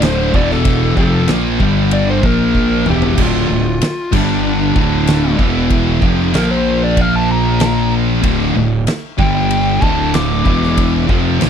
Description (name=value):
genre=stoner and doom metal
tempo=95 BPM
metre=4/4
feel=straight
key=D minor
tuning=A4 = 441 Hz
part: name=fuzz lead guitar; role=melody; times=0.0-11.1 s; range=D4 to D6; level=-20 LUFS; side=left 1 dB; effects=distortion, slapback echo
part: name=heavy high-gain guitar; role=riff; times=0.0-11.5 s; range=D2 to Bb3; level=-21 LUFS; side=right 1 dB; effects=distortion
part: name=thick fuzz guitar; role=riff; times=0.0-11.5 s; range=D2 to Bb3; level=-19 LUFS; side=left 14 dB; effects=distortion
part: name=thick fuzz guitar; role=riff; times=0.0-11.5 s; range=D2 to Bb3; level=-19 LUFS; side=right 10 dB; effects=distortion
part: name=fuzz fingered electric bass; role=bass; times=0.0-11.5 s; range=D1 to Bb1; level=-19 LUFS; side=equal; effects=overdrive
part: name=oversized low-tuned drum kit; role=drums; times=0.0-11.5 s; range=crash cymbal, kick drum, ride cymbal, snare drum, toms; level=-18 LUFS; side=equal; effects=none
room=little or no reverb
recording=dry, close 1970s-style studio recording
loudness=-12 LUFS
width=side -8 dB against mid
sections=0.0-11.5 A section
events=lead electric guitar solo 0.0-11.5; drum fill 2.5-3.2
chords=0.3 E5; 1.0 Fadd11; 1.6 G5; 2.2 Bb5; 2.9 Dm; 4.1 G5; 4.8 D5; 5.4 E5; 6.0 F5; 6.3 Bb5; 8.2 D5; 9.2 G5; 9.8 D5; 10.5 E5